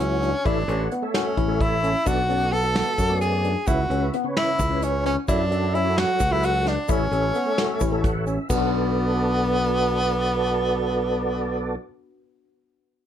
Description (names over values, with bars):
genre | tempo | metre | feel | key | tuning
progressive instrumental, band music in an uneven meter | 261 BPM (eighths) | 7/8 | straight | B minor | A4 = 441 Hz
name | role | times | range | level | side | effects
bright tenor saxophone | melody | 0.0-11.8 s | B3 to A4 | -24 LUFS | right 1 dB | plate reverb
tonewheel organ | accompaniment | 0.0-11.8 s | C#3 to F#5 | -28 LUFS | right 2 dB | overdrive, chorus vibrato, slow rotary speaker
fingered electric bass | bass | 0.0-11.8 s | A1 to F#2 | -26 LUFS | equal | none
soft brush drum kit | drums | 0.0-8.6 s | crash cymbal, hi-hat, kick drum, snare drum | -27 LUFS | equal | none
barky tine electric piano | arpeggios | 0.2-11.9 s | B3 to B4 | -29 LUFS | moving between left 10 dB and left 1 dB | overdrive, auto-pan, tape echo
egg shaker | percussion | 2.1-8.7 s | none | -40 LUFS | right 8 dB | none
room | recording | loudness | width
moderate studio ambience, RT60 0.5 s | none | -20 LUFS | side -10 dB against mid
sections
0.0-8.5 A section; 8.5-11.7 B section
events
tonewheel organ fill 7.8-8.5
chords
0.5 A; 2.1 Bm7; 3.7 C#m7; 5.3 F#m7; 6.9 A; 8.5 Bm7